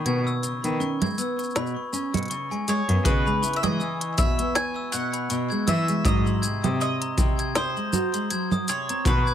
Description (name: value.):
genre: folktronica.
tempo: 80 BPM.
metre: 4/4.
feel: swing 56% on 16ths.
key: C# dorian.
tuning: A4 = 440 Hz.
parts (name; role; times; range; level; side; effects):
glockenspiel with hard plastic mallets; second line; 0.0-9.3 s; G#5 to C#7; -31 LUFS; left 3 dB; ping-pong delay.
nylon-string guitar; arpeggios; 0.0-9.1 s; B2 to F#4; -29 LUFS; equal; digital delay.
clear cello; bass; 0.1-9.2 s; F#2 to E3; -26 LUFS; equal; none.
organic electronic drum kit; drums; 0.1-9.3 s; congas, hi-hat, shaker, snare drum; -28 LUFS; right 3 dB; overdrive.
bowl-back mandolin; melody; 2.7-9.3 s; B4 to G#5; -28 LUFS; right 1 dB; digital delay.
kick drum; drums; 3.0-9.2 s; none; -24 LUFS; equal; none.
room: light reverb.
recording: none.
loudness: -22 LUFS.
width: side -10 dB against mid.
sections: 0.0-3.1 A section; 3.1-9.3 B section.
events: break 0.1-3.1.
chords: 0.1 E6/B (rootless); 3.1 C#m7; 6.1 G#7.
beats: | 0.06 0.81 1.56 2.31 | 3.06 3.81 4.56 5.31 | 6.06 6.81 7.56 8.31 | 9.06.